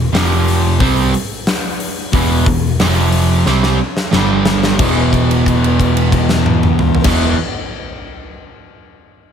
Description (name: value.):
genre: hard rock.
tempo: 90 BPM.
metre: 4/4.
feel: straight.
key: unclear.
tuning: A4 = 437 Hz.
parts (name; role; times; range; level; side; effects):
distorted electric guitar; riff; 0.0-7.4 s; E2 to C4; -18 LUFS; left 10 dB; distortion.
overdriven semi-hollow guitar; riff; 0.0-7.4 s; E2 to C4; -16 LUFS; right 8 dB; none.
overdriven picked electric bass; bass; 0.0-7.3 s; E1 to C2; -17 LUFS; left 1 dB; none.
huge arena drum kit; drums; 0.1-7.2 s; crash cymbal, hi-hat, kick drum, snare drum, toms; -17 LUFS; left 1 dB; none.
room: light reverb.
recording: none.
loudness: -11 LUFS.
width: side -8 dB against mid.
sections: 0.0-4.8 A section; 4.8-7.4 B section.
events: drum fill 3.5-4.8; held note 4.8-7.0.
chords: 0.1 F5; 0.8 Em; 2.8 F5; 3.5 C5; 4.1 G5; 4.8 E5.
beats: 0.13 0.80 1.46 | 2.13 2.79 3.46 4.12 | 4.79 5.45 6.12 6.78.